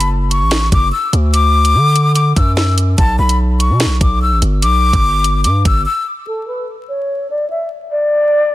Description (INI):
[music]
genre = hip hop, drill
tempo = 146 BPM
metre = 4/4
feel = half-time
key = unclear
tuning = A4 = 443 Hz
[part]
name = breathy jazz flute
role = melody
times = 0.0-8.5 s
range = A4 to E6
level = -16 LUFS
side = left 2 dB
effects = low-pass filter, ping-pong delay
[part]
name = distorted 808-style bass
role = bass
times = 0.0-5.9 s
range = F#1 to D3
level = -14 LUFS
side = equal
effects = distortion
[part]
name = drill drum kit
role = drums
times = 0.0-5.7 s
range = hi-hat, kick drum, snare drum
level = -15 LUFS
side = equal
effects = none
[sound]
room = little or no reverb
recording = dense, heavily limited modern master, vinyl crackle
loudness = -12 LUFS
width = side -15 dB against mid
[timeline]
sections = 0.0-6.3 A section; 6.3-8.5 B section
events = break 5.9-6.3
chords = 0.0 F#m; 1.3 D; 3.0 G; 6.3 N.C.